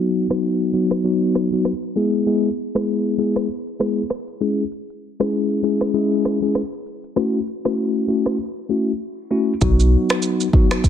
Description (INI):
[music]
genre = afrobeats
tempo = 98 BPM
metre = 4/4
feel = swing 58% on 16ths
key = unclear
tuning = A4 = 441 Hz
[part]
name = mellow tine electric piano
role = accompaniment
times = 0.0-10.8 s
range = F#3 to G#4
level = -19 LUFS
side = left 2 dB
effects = medium stereo tremolo
[part]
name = afro-pop drum kit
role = drums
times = 0.0-10.9 s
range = finger snaps, kick drum, rim click, shaker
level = -20 LUFS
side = right 1 dB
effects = none
[part]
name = warm sub bass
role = bass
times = 9.6-10.0 s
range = B1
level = -15 LUFS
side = equal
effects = none
[sound]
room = light reverb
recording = dense, heavily limited modern master, low-pass filter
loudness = -18 LUFS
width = side -9 dB against mid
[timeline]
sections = 0.0-9.6 A section; 9.6-10.9 B section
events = filter sweep 0.0-9.6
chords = 0.0 B; 2.0 E; 4.4 C#m; 7.2 F#m7; 9.6 B